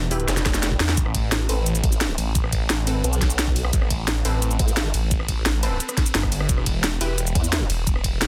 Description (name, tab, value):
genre	dark technical drum and bass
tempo	174 BPM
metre	4/4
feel	straight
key	A minor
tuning	A4 = 439 Hz
part	orchestra-hit-like synth stab	stabs	0.0-8.3 s	C4 to B4	-34 LUFS	equal	built-in reverb, dub echo
part	phased detuned saw bass	bass	0.0-8.3 s	E1 to E2	-26 LUFS	equal	phaser, tube saturation, sidechain pumping
part	drum and bass drum kit	drums	0.1-8.3 s	hi-hat, ride cymbal, rim click, shaker, snare drum	-27 LUFS	equal	overdrive
part	formant-sweep wobble bass	bass	0.3-4.9, 7.4-7.7 s	F1 to E2	-26 LUFS	equal	chorus, tube saturation
part	swell	sound effects	0.5-1.0 s	none	-39 LUFS	equal	none
part	electronic kick drum	drums	0.5-8.1 s	none	-25 LUFS	equal	none
room	digital ambience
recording	dense, heavily limited modern master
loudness	-22 LUFS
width	mono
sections	0.0-8.3 A section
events	drum fill 0.3-1.0; swell 0.5-1.0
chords	0.0 Em; 1.0 Amadd9; 6.5 Em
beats	0.28 0.63 | 0.97 1.32 1.66 2.01 | 2.35 2.70 3.04 3.39 | 3.73 4.08 4.42 4.77 | 5.11 5.46 5.80 6.15 | 6.49 6.84 7.18 7.53 | 7.87 8.21